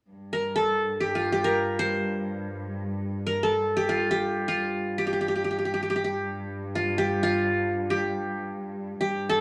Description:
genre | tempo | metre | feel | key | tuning
Turkish makam ensemble | free time | none | none | G makam ussak | A4 = 443 Hz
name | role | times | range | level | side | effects
rich chamber cello section | drone | 0.1-9.4 s | G2 | -36 LUFS | equal | none
qanun | melody | 0.3-9.4 s | F4 to C5 | -28 LUFS | equal | none
room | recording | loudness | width
wet studio reverb, RT60 0.6 s | none | -27 LUFS | mono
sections
0.1-9.4 A section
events
none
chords
none

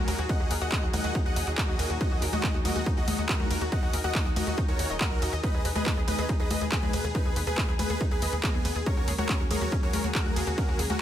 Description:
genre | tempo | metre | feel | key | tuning
uplifting trance | 140 BPM | 4/4 | straight | Eb minor | A4 = 440 Hz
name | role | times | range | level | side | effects
dense compressed supersaw | melody | 0.0-11.0 s | Cb4 to Gb5 | -34 LUFS | right 1 dB | sidechain pumping, tape echo
muted studio string section | sustained chords | 0.0-11.0 s | Bb2 to Ab4 | -37 LUFS | equal | sidechain pumping
tight sequencer bass | bass | 0.0-11.0 s | Eb1 to Eb2 | -32 LUFS | equal | sidechain pumping
wide unison pluck | arpeggios | 0.1-11.0 s | Db4 to Eb5 | -36 LUFS | left 3 dB | sidechain pumping, ping-pong delay
techno drum kit | drums | 0.1-11.0 s | congas, handclaps, hi-hat, ride cymbal | -32 LUFS | left 2 dB | overdrive, sidechain pumping on hats, studio reverb, sidechain pumping on cymbals, sidechain pumping on perc
electronic kick drum | drums | 0.3-10.7 s | none | -28 LUFS | equal | overdrive, studio reverb
room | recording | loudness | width
little or no reverb | none | -25 LUFS | side -11 dB against mid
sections
0.0-11.0 A section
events
none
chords
0.0 Ebm; 5.4 Abm/Eb; 8.9 Gbadd9/Eb

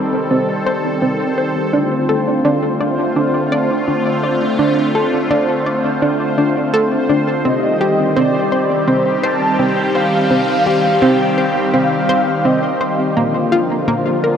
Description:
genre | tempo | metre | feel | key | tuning
ambient, sequencer-driven space music | 84 BPM | 4/4 | straight | C dorian | A4 = 440 Hz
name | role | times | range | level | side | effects
sweeping resonant pad | sustained chords | 0.0-14.4 s | D3 to A4 | -17 LUFS | equal | chorus, shimmer reverb
analog pluck | riff | 0.0-14.4 s | Bb3 to D5 | -17 LUFS | equal | chorus, shimmer reverb, analog delay
bubbling stepped-filter texture | texture | 0.0-14.4 s | C5 | -24 LUFS | right 1 dB | chorus, built-in reverb, shimmer reverb
breathy flute-like synth lead | melody | 7.5-13.0 s | C5 to A5 | -19 LUFS | equal | ensemble chorus, shimmer reverb, analog delay
room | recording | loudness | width
wet huge ambient reverb, RT60 8.3 s | dark, warm production | -13 LUFS | side -8 dB against mid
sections
0.0-14.4 A section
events
none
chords
0.0 Cm; 1.7 Dm7; 7.5 Cm; 13.2 Bb

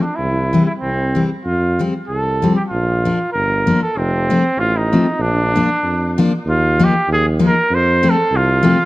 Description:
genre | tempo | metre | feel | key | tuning
alpine folk, alpine dance band | 96 BPM | 2/4 | swing 54% on 8ths | Bb major | A4 = 442 Hz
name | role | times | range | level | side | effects
warm trumpet | melody | 0.0-8.9 s | C4 to C5 | -18 LUFS | right 1 dB | tape echo
picked steel-string acoustic guitar | accompaniment | 0.0-8.8 s | E3 to Eb4 | -17 LUFS | left 2 dB | none
mellow tuba | bass | 0.2-8.7 s | F1 to F2 | -19 LUFS | right 1 dB | none
room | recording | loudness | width
light reverb | close, detailed microphones | -14 LUFS | side -18 dB against mid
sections
0.0-6.5 A section; 6.5-8.9 B section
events
none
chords
0.2 C; 1.5 Fsus2; 2.7 Bb; 4.0 F; 5.2 Bb; 6.5 Ebsus2; 7.7 F

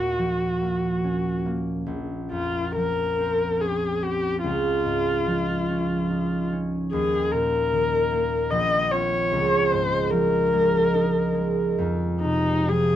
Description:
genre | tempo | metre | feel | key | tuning
classical, impressionist duo for viola and harp | 63-76 BPM | 3/4 | rubato | Db major | A4 = 436 Hz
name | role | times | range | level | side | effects
warm viola | melody | 0.0-13.0 s | Eb4 to Eb5 | -23 LUFS | left 2 dB | none
concert harp | accompaniment | 0.0-13.0 s | Bb1 to F4 | -25 LUFS | right 2 dB | none
room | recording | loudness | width
moderate studio reverb, RT60 0.6 s | dark, warm production | -21 LUFS | side -11 dB against mid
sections
0.0-13.0 A section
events
none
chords
0.0 Ebm9; 1.9 Bbmadd9; 4.4 Dbadd9; 6.9 Eb5; 8.5 Bbmadd9; 9.3 Db69; 11.8 Fm7

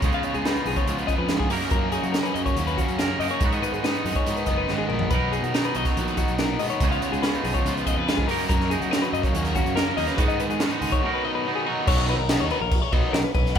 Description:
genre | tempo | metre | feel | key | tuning
math rock and midwest emo | 142 BPM | 4/4 | straight | B lydian | A4 = 440 Hz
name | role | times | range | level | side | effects
twangy electric guitar | accompaniment | 0.0-13.6 s | F#2 to A#4 | -30 LUFS | right 10 dB | none
clean electric guitar | arpeggios | 0.0-13.6 s | F#4 to E#5 | -28 LUFS | left 8 dB | none
crunchy overdriven guitar | riff | 0.0-13.6 s | F#2 to E#4 | -28 LUFS | left 1 dB | none
picked electric bass | bass | 0.0-13.6 s | F#1 to F#3 | -30 LUFS | equal | none
crisp fusion drum kit | drums | 0.0-13.6 s | crash cymbal, hi-hat, kick drum, snare drum, toms | -25 LUFS | right 1 dB | none
room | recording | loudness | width
moderate recital hall reverb, RT60 1.4 s | recorded in a church or concert hall | -21 LUFS | side -8 dB against mid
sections
0.0-11.9 A section; 11.9-13.6 B section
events
drum fill 4.7-5.1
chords
0.0 C#9; 1.5 F#6; 3.4 G#m9; 5.1 Bmaj7; 6.8 C#9; 8.3 F#6; 10.2 G#m7; 11.0 Bmaj7

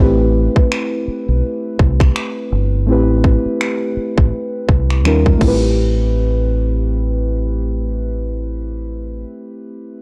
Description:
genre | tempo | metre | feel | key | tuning
contemporary R&B | 83 BPM | 4/4 | swing 58% on 16ths | A minor | A4 = 440 Hz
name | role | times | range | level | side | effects
muted felt-like synth keys | accompaniment | 0.0-10.0 s | G3 to B4 | -22 LUFS | equal | chorus
deep dub fingered electric bass | bass | 0.0-9.2 s | G1 to D#2 | -19 LUFS | equal | none
trap drum kit | drums | 0.6-5.6 s | crash cymbal, finger snaps, kick drum | -17 LUFS | equal | overdrive
room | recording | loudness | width
little or no reverb | dry, gritty hardware recording, cassette tape | -16 LUFS | mono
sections
0.0-5.8 A section; 5.8-8.7 B section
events
none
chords
0.0 Am9; 5.0 D#9; 5.4 Am9

